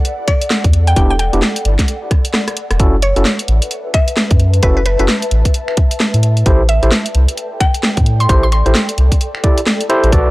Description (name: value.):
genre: UK garage, two-step garage.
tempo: 131 BPM.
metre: 4/4.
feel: swing 60% on 16ths.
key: F# phrygian.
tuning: A4 = 440 Hz.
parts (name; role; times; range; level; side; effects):
garage drum kit; drums; 0.0-10.2 s; finger snaps, hi-hat, rim click, snare drum; -17 LUFS; equal; none.
ethereal airy pad; texture; 0.0-10.3 s; A4 to A5; -25 LUFS; left 1 dB; ensemble chorus, built-in reverb, sidechain pumping.
mallet-like synth pluck; melody; 0.3-8.6 s; B4 to C6; -21 LUFS; equal; chorus, analog delay.
electronic kick drum; drums; 0.3-10.2 s; none; -13 LUFS; equal; none.
soft dub sub bass; bass; 0.6-10.3 s; E1 to A2; -12 LUFS; equal; none.
overdriven tine electric piano; stabs; 1.0-10.3 s; B3 to D5; -18 LUFS; equal; analog delay.
room: little or no reverb.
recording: dry, gritty hardware recording, transformer saturation.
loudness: -11 LUFS.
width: side -19 dB against mid.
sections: 0.0-2.8 A section; 2.8-10.3 A section.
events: drum fill 2.1-2.8.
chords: 0.0 Em7; 2.8 F#m7; 6.2 Am7.